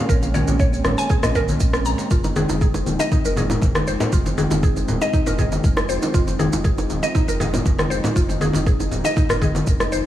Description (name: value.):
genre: afro house.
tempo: 119 BPM.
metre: 4/4.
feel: straight.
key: F minor.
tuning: A4 = 440 Hz.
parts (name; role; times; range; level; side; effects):
warm analog pad; sustained chords; 0.0-10.1 s; F3 to Eb4; -26 LUFS; right 1 dB; chorus, sidechain pumping.
mallet-like synth pluck; arpeggios; 0.1-10.0 s; Eb4 to Bb5; -26 LUFS; equal; wide subtle chorus, cassette tape, sidechain pumping, dub echo.
warm sub bass; bass; 0.1-10.0 s; Eb1 to Bb1; -26 LUFS; equal; sidechain pumping.
electronic kick drum; drums; 0.1-9.8 s; none; -19 LUFS; equal; none.
electronic shaker and rim click; drums; 0.1-10.0 s; none; -28 LUFS; right 1 dB; none.
congas; percussion; 0.2-9.8 s; none; -25 LUFS; left 2 dB; analog delay.
bongos; percussion; 2.2-9.9 s; none; -30 LUFS; right 2 dB; none.
room: light reverb, digital ambience.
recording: echo-heavy mix.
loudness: -17 LUFS.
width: side -12 dB against mid.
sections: 0.0-10.1 A section.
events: none.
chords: 0.0 Bbm9; 2.1 Fm7.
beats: | 0.09 0.60 1.10 1.61 | 2.11 2.61 3.12 3.62 | 4.13 4.63 5.13 5.64 | 6.14 6.65 7.15 7.66 | 8.16 8.66 9.17 9.67.